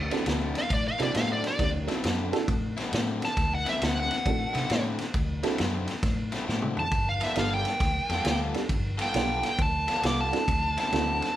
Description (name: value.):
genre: electric blues shuffle.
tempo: 135 BPM.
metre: 4/4.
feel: swing 65% on 8ths.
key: D mixolydian.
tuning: A4 = 439 Hz.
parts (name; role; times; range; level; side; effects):
honky-tonk upright piano; accompaniment; 0.0-11.4 s; B3 to Bb4; -32 LUFS; right 4 dB; none.
vintage muted fingered electric bass; bass; 0.0-11.2 s; G1 to C3; -32 LUFS; left 1 dB; none.
crunchy overdriven guitar; riff; 0.1-11.3 s; D3 to A4; -34 LUFS; left 3 dB; none.
vintage drum kit; drums; 0.1-11.3 s; kick drum, ride cymbal, snare drum, toms; -30 LUFS; equal; none.
smooth overdriven lead guitar; melody; 0.6-11.4 s; D5 to D6; -28 LUFS; equal; none.
room: light reverb.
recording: band playing live in one room.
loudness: -25 LUFS.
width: side -13 dB against mid.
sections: 0.0-11.4 A section.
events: drum fill 6.5-6.9.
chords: 0.0 D9; 6.9 G9; 10.5 D9.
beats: 0.26 0.71 1.15 | 1.59 2.04 2.48 2.92 | 3.37 3.81 4.25 4.70 | 5.14 5.58 6.03 6.47 | 6.92 7.36 7.81 8.25 | 8.70 9.14 9.59 10.04 | 10.48 10.93.